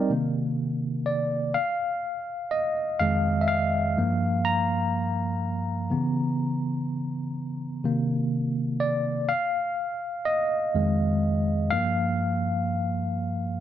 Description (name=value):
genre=R&B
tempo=62 BPM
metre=4/4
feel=swing 54% on 16ths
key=C minor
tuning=A4 = 439 Hz
part: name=bright tine electric piano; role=solo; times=0.0-13.6 s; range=F2 to Bb5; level=-24 LUFS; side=equal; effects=medium stereo tremolo
room=light reverb, digital ambience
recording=dark, warm production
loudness=-24 LUFS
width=side -11 dB against mid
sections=0.1-13.6 A section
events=tine electric piano solo 0.1-13.6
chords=0.1 Cm7; 1.6 Fm7; 4.0 Gm7; 5.9 Dbm7; 7.8 Cm7; 9.3 Fm7; 11.7 Gm7